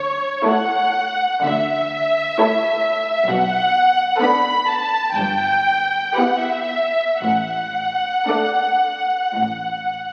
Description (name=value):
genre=classical, slow romantic movement for string orchestra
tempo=55-67 BPM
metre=4/4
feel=rubato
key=D major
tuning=A4 = 441 Hz
part: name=clear symphonic violin section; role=melody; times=0.0-10.1 s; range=C#5 to B5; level=-20 LUFS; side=equal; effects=none
part: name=bright symphonic double bass section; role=bass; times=0.0-10.1 s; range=G1 to D2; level=-36 LUFS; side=equal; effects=none
part: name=rich symphonic cello section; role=bass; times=0.0-10.1 s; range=G2 to D3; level=-31 LUFS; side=equal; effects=none
part: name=rich symphonic viola section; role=accompaniment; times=0.4-9.1 s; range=A3 to E4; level=-26 LUFS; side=equal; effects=none
part: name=clear symphonic violin section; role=second line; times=0.5-9.1 s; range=G4 to D5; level=-27 LUFS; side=equal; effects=none
room=wet scoring stage reverb, RT60 1.8 s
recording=very old 78 rpm record, vinyl crackle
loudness=-19 LUFS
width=mono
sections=0.0-10.1 A section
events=none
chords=0.0 A/D; 3.3 Bm7; 5.2 Em/G; 7.2 D/A; 9.4 N.C.